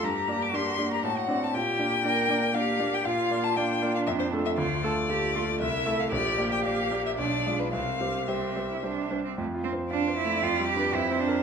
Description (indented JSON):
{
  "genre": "quick classical-period movement for piano trio",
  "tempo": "117 BPM",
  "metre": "3/4",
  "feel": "rubato",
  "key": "F major from 3.1 s",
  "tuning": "A4 = 440 Hz",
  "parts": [
    { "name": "rich violin", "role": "melody", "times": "0.0-11.4 s", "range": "B4 to D6", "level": "-30 LUFS", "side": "left 7 dB", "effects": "none" },
    { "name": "clear cello", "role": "second line", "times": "0.0-11.4 s", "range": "A3 to Bb4", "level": "-30 LUFS", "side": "right 5 dB", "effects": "none" },
    { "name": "bright concert grand piano", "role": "accompaniment", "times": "0.0-11.4 s", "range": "Bb1 to D5", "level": "-29 LUFS", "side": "equal", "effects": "none" }
  ],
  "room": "wet recital hall reverb, RT60 1.8 s",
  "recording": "minimal, uncompressed stereo recording",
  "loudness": "-25 LUFS",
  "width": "side -6 dB against mid",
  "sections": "0.0-9.4 A section; 9.4-11.4 B section",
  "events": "none",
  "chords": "0.0 Gm; 1.0 D7/A; 1.5 Gm/Bb; 3.1 Bb; 4.1 F; 4.6 Dm; 5.6 Am/C; 6.1 Gm/Bb; 7.2 Bdim7; 7.7 C; 9.4 F; 10.4 G7/F"
}